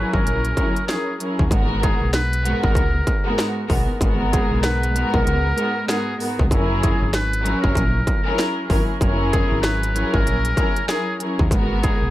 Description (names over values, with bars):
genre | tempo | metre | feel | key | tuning
hip hop, boom-bap hip-hop | 96 BPM | 4/4 | swing 60% on 16ths | G# minor | A4 = 442 Hz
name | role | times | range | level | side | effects
trumpet with metal mute | melody | 0.0-12.1 s | G#4 to B4 | -27 LUFS | equal | high-pass filter, low-pass filter, plate reverb, ping-pong delay
dark studio string section | accompaniment | 0.0-12.1 s | G#2 to A#4 | -23 LUFS | equal | cassette tape, high-pass filter, low-pass filter, plate reverb
deep dub fingered electric bass | bass | 0.0-12.1 s | F#1 to D#2 | -23 LUFS | equal | none
industrial drum kit | drums | 0.1-12.0 s | hi-hat, kick drum, snare drum | -21 LUFS | equal | distortion, overdrive
room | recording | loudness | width
light reverb | vinyl crackle | -18 LUFS | side -15 dB against mid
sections
0.0-1.5 A section; 1.5-12.1 B section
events
none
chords
0.0 F#9; 1.5 G#m9; 6.5 F#9; 11.5 G#m9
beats
0.26 0.89 | 1.51 2.14 2.76 3.39 | 4.01 4.64 5.26 5.89 | 6.51 7.14 7.76 8.39 | 9.01 9.64 10.26 10.89 | 11.51